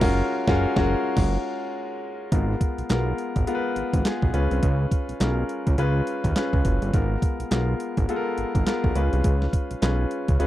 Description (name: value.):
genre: R&B, new jack swing.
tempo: 104 BPM.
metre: 4/4.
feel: swing 60% on 16ths.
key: G# dorian.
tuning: A4 = 439 Hz.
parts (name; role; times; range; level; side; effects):
warm concert grand piano; accompaniment; 0.0-10.5 s; G#3 to B4; -26 LUFS; left 2 dB; none.
fat analog bass; bass; 0.0-10.5 s; F#1 to D#2; -24 LUFS; equal; none.
crisp 8-bit digital drum machine; drums; 0.0-10.5 s; crash cymbal, handclaps, hi-hat, kick drum, snare drum; -24 LUFS; equal; overdrive.
room: little or no reverb.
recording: dry, close 1970s-style studio recording.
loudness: -21 LUFS.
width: side -14 dB against mid.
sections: 0.0-2.3 A section; 2.3-10.5 B section.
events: band accent 0.0-2.3.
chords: 0.0 F#maj9; 2.3 G#m69; 4.3 C#7; 6.9 G#m69; 9.0 C#7.